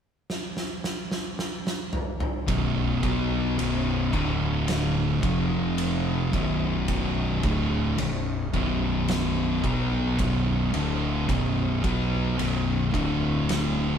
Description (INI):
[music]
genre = stoner and doom metal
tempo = 54 BPM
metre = 4/4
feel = straight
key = B phrygian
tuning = A4 = 440 Hz
[part]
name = oversized low-tuned drum kit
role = drums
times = 0.3-13.8 s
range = kick drum, ride cymbal, snare drum, toms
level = -30 LUFS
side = right 1 dB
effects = none
[part]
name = thick fuzz guitar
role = riff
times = 2.5-14.0 s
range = B1 to B3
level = -26 LUFS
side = left 4 dB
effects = distortion
[part]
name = thick fuzz guitar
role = riff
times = 2.5-14.0 s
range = B1 to B3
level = -29 LUFS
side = right 6 dB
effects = distortion
[part]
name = fuzz fingered electric bass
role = bass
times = 2.5-14.0 s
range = B0 to B1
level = -30 LUFS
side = right 1 dB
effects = overdrive
[sound]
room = light reverb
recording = band playing live in one room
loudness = -23 LUFS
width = side -8 dB against mid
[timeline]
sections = 0.0-2.5 A section; 2.5-14.0 B section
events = drum fill 0.3-2.5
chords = 0.0 N.C.; 2.5 B5; 4.1 D5; 5.2 F5; 6.3 Bm; 12.9 D5